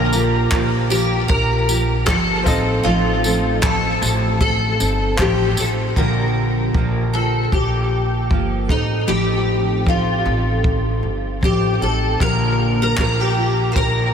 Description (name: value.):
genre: acoustic pop.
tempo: 77 BPM.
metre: 4/4.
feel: swing 55% on 16ths.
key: Bb major.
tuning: A4 = 439 Hz.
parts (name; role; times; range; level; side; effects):
picked steel-string acoustic guitar; melody; 0.0-14.1 s; Eb4 to C5; -20 LUFS; left 2 dB; ensemble chorus, ping-pong delay.
bright upright piano; accompaniment; 0.0-6.0 s; Bb3 to Eb5; -32 LUFS; left 4 dB; none.
picked steel-string acoustic guitar; accompaniment; 0.0-14.1 s; A2 to A4; -22 LUFS; right 1 dB; double-tracked left and right.
upright bass; bass; 0.0-14.1 s; G1 to Bb1; -21 LUFS; equal; none.
compact cocktail drum kit; drums; 0.1-14.0 s; handclaps, kick drum, tambourine; -22 LUFS; equal; none.
room: moderate huge ambient reverb, RT60 7.8 s.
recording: dreamy mix soaked in reverb.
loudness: -16 LUFS.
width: side -7 dB against mid.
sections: 0.0-6.0 A section; 6.0-14.1 B section.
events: none.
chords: 0.0 Bb6; 2.5 F7/A; 6.0 Bb6; 8.7 F7/A; 12.2 Bb6.